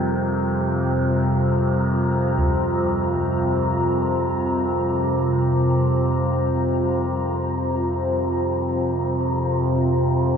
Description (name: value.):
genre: dark ambient drone.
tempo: free time.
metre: none.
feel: none.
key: unclear.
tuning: A4 = 440 Hz.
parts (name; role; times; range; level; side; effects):
deep dark ambient pad; sustained chords; 0.0-10.4 s; F4 to Bb5; -23 LUFS; equal; chorus, built-in reverb.
quartz singing bowl; arpeggios; 0.0-5.5 s; G3; -31 LUFS; right 1 dB; diffuse ambient delay.
overtone-sweeping drone; drone; 0.0-10.4 s; F2 to C3; -22 LUFS; equal; chorus, built-in reverb, phaser.
taiko ensemble; percussion; 2.4-2.6 s; none; -32 LUFS; equal; none.
room: wet cathedral reverb, RT60 6.3 s.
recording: dreamy mix soaked in reverb.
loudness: -19 LUFS.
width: side -7 dB against mid.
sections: 0.0-10.4 A section.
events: none.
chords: 0.0 Fsus2.